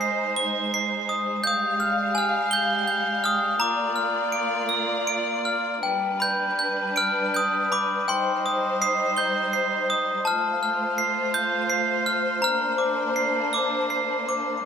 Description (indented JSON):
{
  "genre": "children's music, lullaby",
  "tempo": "55 BPM (dotted quarters)",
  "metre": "6/8",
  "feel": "rubato",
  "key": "unclear",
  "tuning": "A4 = 440 Hz",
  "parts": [
    { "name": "glockenspiel with brass mallets", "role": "melody", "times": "0.0-14.7 s", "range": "G5 to Bb7", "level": "-23 LUFS", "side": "equal", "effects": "ping-pong delay" },
    { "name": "rich studio string section", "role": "sustained chords", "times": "0.0-14.6 s", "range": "G3 to F5", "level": "-27 LUFS", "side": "equal", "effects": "none" }
  ],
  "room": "wet plate reverb, RT60 2.7 s",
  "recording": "dreamy mix soaked in reverb",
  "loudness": "-21 LUFS",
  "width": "side -7 dB against mid",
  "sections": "0.0-5.8 A section; 5.8-14.7 B section",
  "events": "none",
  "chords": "0.0 Ab; 1.4 Fmadd9; 3.6 Bb; 5.8 G; 8.1 Cm/G; 10.3 F; 12.4 Bbadd9"
}